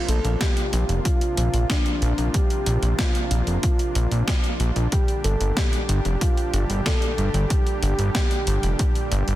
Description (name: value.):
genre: synthwave.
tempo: 93 BPM.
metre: 4/4.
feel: straight.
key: Bb major.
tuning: A4 = 440 Hz.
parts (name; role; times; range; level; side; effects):
soft octave-layered synth lead; melody; 0.0-9.4 s; D4 to A4; -29 LUFS; equal; chorus, tape echo.
soft supersaw; sustained chords; 0.0-9.4 s; Bb2 to G4; -30 LUFS; equal; sidechain pumping.
fat analog bass; bass; 0.1-9.4 s; F1 to Bb1; -21 LUFS; equal; none.
gated 80s digital drum machine; drums; 0.1-9.4 s; hi-hat, snare drum; -28 LUFS; equal; gated reverb, gated reverb snare.
electronic kick drum; drums; 0.4-8.9 s; none; -22 LUFS; equal; none.
room: digital ambience.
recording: dense, heavily limited modern master.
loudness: -20 LUFS.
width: side -14 dB against mid.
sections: 0.0-9.4 A section.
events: none.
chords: 0.0 Bbadd9; 4.9 Gm.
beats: 0.41 1.05 1.70 | 2.34 2.99 3.63 4.28 | 4.92 5.57 6.21 6.86 | 7.50 8.15 8.79.